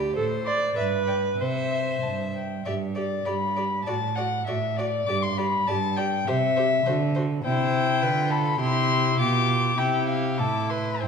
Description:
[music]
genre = quick classical-period movement for string quartet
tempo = 94-104 BPM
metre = 2/4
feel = rubato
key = G major, C major from 7.4 s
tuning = A4 = 438 Hz
[part]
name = warm violin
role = second line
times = 0.0-11.1 s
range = G4 to E5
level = -32 LUFS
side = left 3 dB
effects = none
[part]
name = warm viola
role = accompaniment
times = 0.0-11.1 s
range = E4 to D5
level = -30 LUFS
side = right 2 dB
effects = none
[part]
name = rich cello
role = bass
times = 0.0-11.1 s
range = G2 to D3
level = -27 LUFS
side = right 2 dB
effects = none
[part]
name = dark violin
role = melody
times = 0.5-11.1 s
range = D5 to D6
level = -26 LUFS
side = left 5 dB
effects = none
[sound]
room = wet recital hall reverb, RT60 1.6 s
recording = recorded in a church or concert hall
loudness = -22 LUFS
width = side -6 dB against mid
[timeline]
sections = 0.0-2.7 A section; 2.7-11.1 B section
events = none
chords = 0.2 Am; 0.8 G; 1.4 C; 2.7 G; 3.9 D/A; 5.1 G5; 6.3 C; 6.9 D; 7.4 C; 8.0 G7/D; 8.6 C; 9.2 G7/B; 9.8 C; 10.4 Am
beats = | 0.16 0.76 | 1.39 2.03 | 2.65 3.26 | 3.86 4.47 | 5.08 5.68 | 6.27 6.86 | 7.45 8.02 | 8.61 9.20 | 9.79 10.39 | 11.02

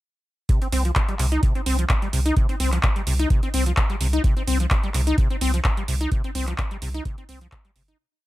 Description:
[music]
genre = acid house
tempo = 128 BPM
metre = 4/4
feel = swing 54% on 16ths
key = C minor pentatonic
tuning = A4 = 440 Hz
[part]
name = acid bass, saw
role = riff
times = 0.5-8.0 s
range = C3 to Eb4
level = -27 LUFS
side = left 1 dB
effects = overdrive, ensemble chorus, cassette tape, sidechain pumping, tape echo
[part]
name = electro analog drum machine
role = drums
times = 0.5-8.0 s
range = handclaps, hi-hat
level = -28 LUFS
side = right 1 dB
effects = none
[part]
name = electronic kick drum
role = drums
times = 0.5-7.6 s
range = none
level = -22 LUFS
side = equal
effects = none
[part]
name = round analog bass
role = bass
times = 0.7-7.9 s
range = G1 to C2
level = -22 LUFS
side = equal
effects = sidechain pumping
[sound]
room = little or no reverb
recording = none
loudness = -20 LUFS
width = side -16 dB against mid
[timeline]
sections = 0.5-8.0 groove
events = fade-out 5.5-8.0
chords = none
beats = | 0.49 0.96 1.43 1.90 | 2.37 2.83 3.30 3.77 | 4.24 4.71 5.18 5.65 | 6.12 6.58 7.05 7.52

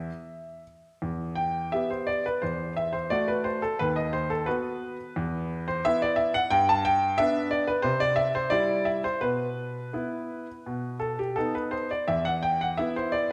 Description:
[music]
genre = classical-period piano sonatina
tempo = 87 BPM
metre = 4/4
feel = uneven beats, rubato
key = E minor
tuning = A4 = 440 Hz
[part]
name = clear baby grand piano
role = solo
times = 0.0-13.3 s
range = D#2 to A5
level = -28 LUFS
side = equal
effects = none
[sound]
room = moderate recital hall reverb, RT60 1.6 s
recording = none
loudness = -27 LUFS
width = mono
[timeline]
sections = 0.0-1.0 A section; 1.0-13.3 B section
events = none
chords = 0.0 E5; 1.0 Em; 2.4 D13/E; 3.8 B/D#; 5.1 E5; 6.5 G; 7.8 C; 9.2 E5/B; 10.7 B; 12.1 E5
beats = 0.30 | 1.01 1.71 2.41 3.10 | 3.79 4.47 5.15 5.83 | 6.49 7.16 7.83 8.52 | 9.22 9.94 10.66 11.37 | 12.08 12.78

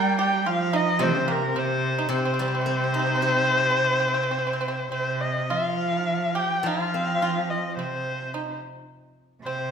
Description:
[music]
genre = chinese traditional, Chinese chamber ensemble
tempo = 108 BPM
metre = 4/4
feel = rubato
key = C yu mode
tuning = A4 = 439 Hz
[part]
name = dark erhu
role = melody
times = 0.0-9.7 s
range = Bb4 to G5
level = -25 LUFS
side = left 2 dB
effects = none
[part]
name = clear cello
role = second line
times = 0.0-9.7 s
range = C3 to G3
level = -28 LUFS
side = right 4 dB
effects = none
[part]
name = pipa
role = second line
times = 0.0-9.7 s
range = Bb3 to Bb4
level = -30 LUFS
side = right 4 dB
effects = none
[part]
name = steel-string zither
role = accompaniment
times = 1.0-8.3 s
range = C3 to G4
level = -30 LUFS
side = left 4 dB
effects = none
[sound]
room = wet recital hall reverb, RT60 1.4 s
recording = minimal, uncompressed stereo recording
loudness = -22 LUFS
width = side -7 dB against mid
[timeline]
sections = 0.0-5.5 A section; 5.5-9.7 B section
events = none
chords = none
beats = 0.48 | 1.02 1.57 2.12 2.66 | 3.22 3.78 4.34 4.92 | 5.50 6.07 6.64 7.21 | 7.76 8.32 8.88 9.43

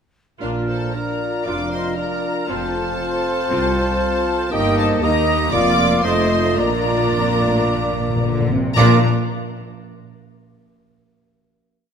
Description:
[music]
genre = quick classical-period movement for symphony orchestra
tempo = 109-120 BPM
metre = 4/4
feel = rubato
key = Bb major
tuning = A4 = 440 Hz
[part]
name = clear studio violin section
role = melody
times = 0.4-9.1 s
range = F5 to D6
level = -26 LUFS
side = left 3 dB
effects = none
[part]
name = mellow silver concert flute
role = second line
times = 0.4-9.1 s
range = Bb4 to F5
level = -28 LUFS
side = left 1 dB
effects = none
[part]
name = rich studio violin section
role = second line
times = 0.4-9.1 s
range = F4 to D5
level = -28 LUFS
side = left 3 dB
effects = none
[part]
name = warm clarinet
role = second line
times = 0.4-9.0 s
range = F4 to G4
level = -29 LUFS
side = equal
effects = none
[part]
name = warm oboe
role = second line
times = 0.4-9.0 s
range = D5 to F5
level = -29 LUFS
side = right 2 dB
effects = none
[part]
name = dark bassoon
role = accompaniment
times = 0.4-9.0 s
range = A3 to D4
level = -27 LUFS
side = right 2 dB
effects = none
[part]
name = rich chamber viola section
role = accompaniment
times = 0.4-9.1 s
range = A3 to F4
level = -26 LUFS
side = right 1 dB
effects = none
[part]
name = mellow French horn section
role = sustained chords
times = 0.4-9.0 s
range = A3 to F4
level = -26 LUFS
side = left 3 dB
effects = none
[part]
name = clear trumpet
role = stabs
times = 0.4-9.0 s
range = Bb4 to Eb5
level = -27 LUFS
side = right 3 dB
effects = none
[part]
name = warm studio cello section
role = bass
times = 0.4-9.1 s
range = C2 to D3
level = -26 LUFS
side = right 2 dB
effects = none
[part]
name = warm studio double bass section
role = bass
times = 0.4-9.1 s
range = F1 to Eb2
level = -25 LUFS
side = right 4 dB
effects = none
[part]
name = timpani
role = percussion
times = 5.5-9.0 s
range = F2 to Bb2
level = -24 LUFS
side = left 3 dB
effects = none
[sound]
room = wet scoring stage reverb, RT60 2.0 s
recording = none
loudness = -16 LUFS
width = side -7 dB against mid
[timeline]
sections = 0.4-8.8 A section; 8.8-10.9 final chord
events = timpani fill 6.6-8.8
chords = 0.4 Bb; 2.5 F; 4.5 Eb/G; 5.5 Bb/F; 6.0 F7; 6.6 Bb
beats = | 0.42 0.95 1.47 1.98 | 2.49 3.00 3.51 4.01 | 4.52 5.03 5.53 6.05 | 6.58 7.13 7.68 8.22 | 8.77

